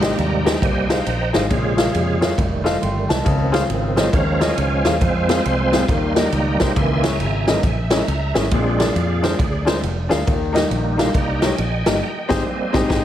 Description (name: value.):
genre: uptempo gospel.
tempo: 137 BPM.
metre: 4/4.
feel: swing 64% on 8ths.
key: Ab major.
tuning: A4 = 436 Hz.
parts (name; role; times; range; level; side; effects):
clear grand piano; accompaniment; 0.0-13.0 s; Ab2 to C6; -22 LUFS; left 3 dB; none.
bright tonewheel organ; sustained chords; 0.0-13.0 s; C3 to C6; -23 LUFS; right 2 dB; slow rotary speaker, overdrive, chorus vibrato.
fingered electric bass; bass; 0.0-13.0 s; F1 to F2; -23 LUFS; equal; none.
swinging big-band drum kit; drums; 0.0-13.0 s; crash cymbal, kick drum, ride cymbal, snare drum; -21 LUFS; equal; none.
room: moderate recital hall reverb, RT60 1.7 s, small room ambience.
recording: heavily compressed radio sound.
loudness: -16 LUFS.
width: side -11 dB against mid.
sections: 0.0-13.0 A section.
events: tonewheel organ solo 0.0-13.0; band accent 12.0-13.0.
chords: 0.0 Abmaj7; 1.5 Bbm7; 2.4 F7; 3.3 Dbmaj7; 4.1 Eb9sus4; 5.0 Fm; 5.9 Eb; 6.8 Dbm6; 8.5 Bb7; 10.3 Eb; 12.0 Abmaj7.